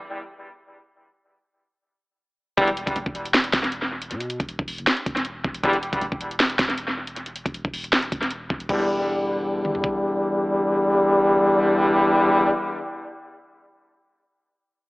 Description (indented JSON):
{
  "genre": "hip hop, trap",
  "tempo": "157 BPM",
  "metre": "4/4",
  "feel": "half-time",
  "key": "E minor",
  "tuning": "A4 = 440 Hz",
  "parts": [
    { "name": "bright brass ensemble", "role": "stabs", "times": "2.6-2.7, 5.6-5.8, 8.7-12.5 s", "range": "E2 to G3", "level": "-20 LUFS", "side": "left 1 dB", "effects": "analog delay" },
    { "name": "warm 808-style bass", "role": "bass", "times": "2.6-10.2 s", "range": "E1 to B2", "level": "-35 LUFS", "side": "equal", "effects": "none" },
    { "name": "trap drum kit", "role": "drums", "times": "2.6-9.9 s", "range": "crash cymbal, hi-hat, kick drum, snare drum, toms", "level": "-23 LUFS", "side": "equal", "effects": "analog delay" }
  ],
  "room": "moderate echo chamber reverb, RT60 1.4 s, digital ambience",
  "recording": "echo-heavy mix, AM radio sound",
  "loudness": "-20 LUFS",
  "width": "side -21 dB against mid",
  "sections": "0.0-8.7 A section; 8.7-11.8 B section",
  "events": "none",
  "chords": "0.0 N.C.; 8.7 Em7"
}